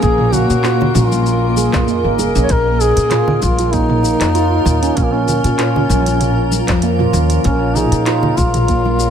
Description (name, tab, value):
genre	organic downtempo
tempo	97 BPM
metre	4/4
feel	swing 54% on 16ths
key	Bb minor pentatonic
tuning	A4 = 442 Hz
part	mellow duduk	melody	0.0-9.1 s	Bb3 to Db5	-18 LUFS	left 3 dB	tape echo
part	granular cloud pad	sustained chords	0.0-9.1 s	Bb3 to Bb5	-22 LUFS	left 3 dB	built-in reverb, sidechain pumping
part	handpan	arpeggios	0.0-9.1 s	F3 to Bb4	-19 LUFS	right 6 dB	tape echo
part	upright bass	bass	0.0-9.1 s	F1 to Bb2	-17 LUFS	equal	none
part	electronic kick drum	drums	0.0-8.8 s	none	-18 LUFS	equal	studio reverb
part	organic electronic drum kit	drums	0.0-9.1 s	handclaps, hi-hat, shaker, toms	-22 LUFS	equal	studio reverb
part	congas and bongos	percussion	0.3-9.1 s	none	-24 LUFS	right 1 dB	none
room	light reverb, small room ambience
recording	none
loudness	-12 LUFS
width	side -8 dB against mid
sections	0.0-9.1 A section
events	none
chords	0.0 Gb/Bb; 2.5 Bbm7; 7.4 Gbmaj13 (rootless)